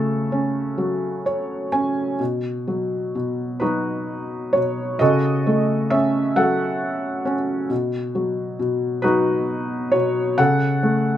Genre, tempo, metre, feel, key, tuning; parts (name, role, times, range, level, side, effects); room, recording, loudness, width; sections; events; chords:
classical, lyrical solo piano; 44 BPM (dotted quarters); 6/8; rubato; F# dorian; A4 = 439 Hz
felt-muted upright piano; solo; 0.0-11.2 s; B2 to G#5; -19 LUFS; equal
light reverb; -19 LUFS; side -11 dB against mid
0.0-11.2 A section
felt piano fill 0.8-2.2
0.0 F#m/C#; 2.2 B; 5.0 F#m/C#; 7.7 B; 10.4 F#m/C#